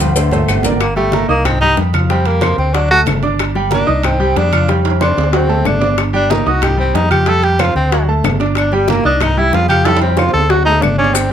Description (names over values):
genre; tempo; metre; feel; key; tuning
latin, salsa; 186 BPM; 4/4; straight; G minor; A4 = 440 Hz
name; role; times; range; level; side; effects
brilliant trombone section; second line; 0.0-0.8 s; Bb2 to F3; -22 LUFS; left 2 dB; none
clear grand piano; accompaniment; 0.0-11.3 s; F#3 to F6; -18 LUFS; right 2 dB; none
fingered electric bass; bass; 0.0-11.3 s; G1 to F2; -16 LUFS; equal; none
agogo bells and timbales; percussion; 0.0-11.3 s; none; -24 LUFS; right 4 dB; none
congas; percussion; 0.0-11.3 s; none; -23 LUFS; left 1 dB; none
cowbell and bongos; percussion; 0.0-11.3 s; none; -22 LUFS; left 7 dB; none
maracas; percussion; 0.0-0.8, 11.2-11.3 s; none; -23 LUFS; left 6 dB; none
claves; percussion; 0.5-11.3 s; none; -24 LUFS; left 8 dB; none
breathy tenor saxophone; melody; 0.8-11.3 s; G3 to A4; -16 LUFS; left 1 dB; none
room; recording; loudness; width
light reverb; none; -11 LUFS; side -9 dB against mid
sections
0.8-11.3 A section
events
drum fill 0.0-0.8, 4.7-6.0, 9.9-11.2; tenor saxophone solo 0.8-11.3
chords
0.2 D5; 0.8 Gmadd9; 1.5 Cm; 2.1 Fsus2; 2.7 D; 3.4 Gm; 4.0 Cm; 4.7 Fsus2; 5.3 D7; 6.0 Gm; 6.6 Cm; 7.3 Fsus2; 7.9 D; 8.6 Gm; 9.2 Cm; 9.9 Fsus2; 10.5 D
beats
0.16 0.48 | 0.81 1.13 1.45 1.78 | 2.10 2.42 2.75 3.07 | 3.39 3.72 4.04 4.36 | 4.69 5.01 5.33 5.66 | 5.98 6.30 6.63 6.95 | 7.27 7.60 7.92 8.24 | 8.57 8.89 9.21 9.54 | 9.86 10.18 10.51 10.83 | 11.15